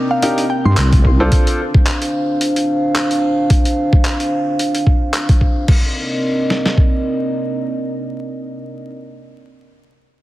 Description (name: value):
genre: glitch hop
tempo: 110 BPM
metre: 4/4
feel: swing 56% on 16ths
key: C minor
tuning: A4 = 440 Hz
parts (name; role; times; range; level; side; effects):
- dark analog pad; sustained chords; 0.0-8.9 s; C4 to F5; -19 LUFS; equal; chorus, sidechain pumping
- bright grand piano; stabs; 0.0-1.6 s; D4 to C5; -21 LUFS; equal; vintage 12-bit sampler grit, sidechain pumping, ping-pong delay
- woody wave-folded pluck; melody; 0.1-1.3 s; F5 to C6; -23 LUFS; equal; chorus, ping-pong delay
- boom bap sampler-style drum kit; drums; 0.2-5.8 s; crash cymbal, handclaps, hi-hat; -23 LUFS; equal; none
- wobble bass; bass; 0.7-1.3 s; C2 to G2; -13 LUFS; equal; chorus
- boom bap sampler-style drum kit; drums; 0.9-6.9 s; kick drum, snare drum; -13 LUFS; equal; none
room: light reverb, digital ambience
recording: heavily compressed radio sound, vinyl crackle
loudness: -13 LUFS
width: side -16 dB against mid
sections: 0.0-5.7 A section; 5.7-10.0 B section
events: none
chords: 0.0 Cm9; 1.3 Dm7; 5.7 Cm9